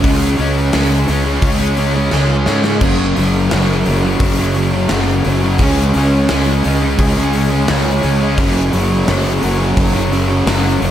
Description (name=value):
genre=rock, shoegaze and dream pop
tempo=86 BPM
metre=4/4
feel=straight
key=unclear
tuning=A4 = 443 Hz
part: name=fuzz guitar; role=riff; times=0.0-10.9 s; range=F#2 to C#4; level=-15 LUFS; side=equal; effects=distortion, lush chorus
part: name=fuzz fingered electric bass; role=bass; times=0.0-10.9 s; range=F#1 to G#2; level=-17 LUFS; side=equal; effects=overdrive
part: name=gated 80s drum kit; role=drums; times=0.0-10.9 s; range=crash cymbal, hi-hat, kick drum, snare drum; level=-20 LUFS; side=equal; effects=none
room=moderate huge ambient reverb, RT60 4.2 s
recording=dreamy mix soaked in reverb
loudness=-12 LUFS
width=side -11 dB against mid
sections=0.0-10.9 A section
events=drum fill 2.1-2.8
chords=0.0 C#5; 2.8 F#5; 5.6 C#5; 8.4 F#5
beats=| 0.05 0.74 1.44 2.13 | 2.83 3.52 4.22 4.92 | 5.61 6.31 7.00 7.70 | 8.39 9.09 9.78 10.47